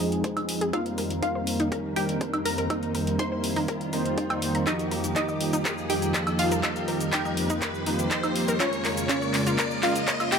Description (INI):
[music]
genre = progressive house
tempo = 122 BPM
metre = 4/4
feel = straight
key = unclear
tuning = A4 = 440 Hz
[part]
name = wide unison pluck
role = melody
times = 0.0-10.4 s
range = Db4 to C6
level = -32 LUFS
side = equal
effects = phaser, sidechain pumping, ping-pong delay
[part]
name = soft round pluck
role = second line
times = 0.0-10.4 s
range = Db5 to C6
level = -37 LUFS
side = left 3 dB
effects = none
[part]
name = airy breathy pad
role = sustained chords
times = 0.0-10.4 s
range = F2 to Eb4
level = -32 LUFS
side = equal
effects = chorus, sidechain pumping
[part]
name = analog pluck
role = arpeggios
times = 0.0-10.2 s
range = Eb4 to Bb5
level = -33 LUFS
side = left 1 dB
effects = chorus, sidechain pumping, ping-pong delay
[part]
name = soft supersaw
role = stabs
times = 0.0-10.4 s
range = F3 to C5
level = -29 LUFS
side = right 1 dB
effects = sidechain pumping, low-pass filter, ping-pong delay
[part]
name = big-room dance drum kit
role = drums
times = 0.0-10.4 s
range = cabasa, handclaps, hi-hat, woodblock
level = -30 LUFS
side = equal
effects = none
[part]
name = riser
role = sound effects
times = 0.2-10.4 s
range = none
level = -35 LUFS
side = left 1 dB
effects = none
[part]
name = electronic kick drum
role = drums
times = 0.2-10.2 s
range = none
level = -37 LUFS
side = left 1 dB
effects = none
[sound]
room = light reverb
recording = none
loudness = -24 LUFS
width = side -6 dB against mid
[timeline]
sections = 0.0-10.4 A section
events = build-up 0.0-10.4; filter sweep on synth arpeggio sound 0.0-10.4; filter sweep on supersaw synth 0.0-10.4; filter sweep on analog synth pad 0.0-10.4; riser 0.2-10.4; drum fill 4.7-10.4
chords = 0.0 Fm7; 0.7 Cm7/F; 8.6 Bbm7/F